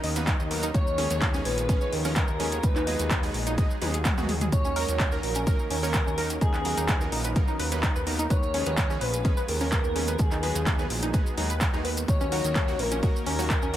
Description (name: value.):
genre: progressive house.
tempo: 127 BPM.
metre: 4/4.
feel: straight.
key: Eb minor.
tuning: A4 = 440 Hz.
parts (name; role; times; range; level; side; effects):
evolving wavetable pad; sustained chords; 0.0-13.8 s; Eb3 to A#4; -38 LUFS; right 1 dB; chorus, built-in reverb, sidechain pumping.
wide unison pluck; arpeggios; 0.0-13.8 s; Db4 to Gb5; -34 LUFS; equal; sidechain pumping, tape echo.
supersaw stab; stabs; 0.0-13.8 s; F3 to Db5; -35 LUFS; right 2 dB; sidechain pumping, tape echo.
fat analog bass; bass; 0.0-13.8 s; Bb1 to D#2; -31 LUFS; equal; sidechain pumping.
deep house drum kit; drums; 0.0-13.8 s; handclaps, hi-hat, toms; -32 LUFS; equal; overdrive.
maracas; percussion; 0.2-13.7 s; none; -39 LUFS; right 3 dB; none.
electronic kick drum; drums; 0.3-13.6 s; none; -25 LUFS; equal; overdrive.
expressive synth lead; melody; 0.7-13.8 s; Ab4 to Db5; -32 LUFS; left 1 dB; lush chorus, tape echo.
airy dreamy lead; second line; 0.7-13.8 s; Ab4 to Db5; -40 LUFS; equal; chorus, sidechain pumping, tape echo.
room: little or no reverb.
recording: none.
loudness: -23 LUFS.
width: side -12 dB against mid.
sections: 0.0-13.8 A section.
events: drum fill 3.8-4.5.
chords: 0.0 Bmaj7; 0.7 Db7; 2.6 Abm7; 4.5 Ebm7; 6.4 Bmaj7; 8.3 Db7; 10.2 Abm7; 12.1 Ebm7.